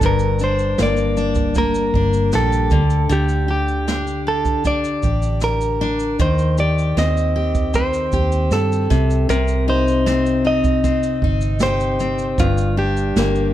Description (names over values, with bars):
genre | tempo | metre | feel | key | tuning
acoustic pop | 78 BPM | 4/4 | straight | G minor | A4 = 440 Hz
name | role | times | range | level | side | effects
direct-recorded clean electric guitar | melody | 0.0-13.5 s | F4 to Eb5 | -22 LUFS | right 1 dB | none
picked steel-string acoustic guitar | accompaniment | 0.0-13.5 s | G2 to G4 | -21 LUFS | left 3 dB | none
vintage muted fingered electric bass | bass | 0.0-13.5 s | G1 to G2 | -21 LUFS | equal | none
jazz brush drum kit | drums | 0.0-13.5 s | kick drum, shaker, snare drum | -23 LUFS | right 2 dB | none
room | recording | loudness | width
light reverb | dark, warm production | -16 LUFS | side -12 dB against mid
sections
0.0-13.5 A section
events
none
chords
0.0 Gm; 2.7 Dsus4; 6.2 Eb6; 8.9 Cm; 12.4 Gm